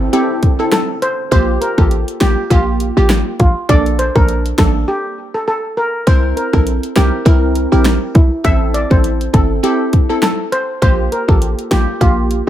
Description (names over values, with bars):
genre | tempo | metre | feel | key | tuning
dancehall | 101 BPM | 4/4 | swing 56% on 16ths | A phrygian | A4 = 440 Hz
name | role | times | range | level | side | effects
short 808-style bass | bass | 0.0-12.4 s | G1 to C2 | -15 LUFS | equal | none
downlifter | sound effects | 0.0-1.3 s | none | -32 LUFS | equal | none
steel pan | melody | 0.1-12.5 s | E4 to E5 | -18 LUFS | equal | none
glassy wavetable pluck | accompaniment | 0.1-12.5 s | Bb3 to Bb4 | -18 LUFS | right 1 dB | chorus
pop drum kit | drums | 0.1-12.5 s | hi-hat, kick drum, rim click, snare drum | -14 LUFS | equal | none
room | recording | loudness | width
little or no reverb | none | -12 LUFS | side -12 dB against mid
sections
0.0-12.5 A section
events
break 4.9-6.1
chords
0.0 Am; 1.3 Gm7; 3.7 Bbmaj7; 6.1 C7; 8.4 Am; 10.8 Gm7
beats
0.13 0.72 | 1.32 1.91 2.51 3.10 | 3.69 4.29 4.88 5.48 | 6.07 6.66 7.26 7.85 | 8.45 9.04 9.63 10.23 | 10.82 11.42 12.01